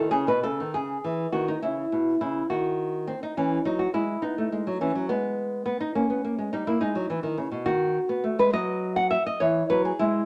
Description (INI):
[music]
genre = classical, baroque-style dance for nylon-string guitar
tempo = 69 BPM (dotted quarters)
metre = 6/8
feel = rubato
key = C# minor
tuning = A4 = 440 Hz
[part]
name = nylon-string guitar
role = solo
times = 0.0-10.3 s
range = B2 to F#5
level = -26 LUFS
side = equal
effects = none
[sound]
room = moderate studio reverb, RT60 0.9 s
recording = none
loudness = -26 LUFS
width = mono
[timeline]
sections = 0.7-10.3 A section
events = none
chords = 0.0 E (rootless); 0.7 C#m; 2.5 N.C.; 3.4 Emaj13; 4.2 G#m; 6.0 Gdim7; 6.8 G#m; 7.7 B/D#; 9.4 E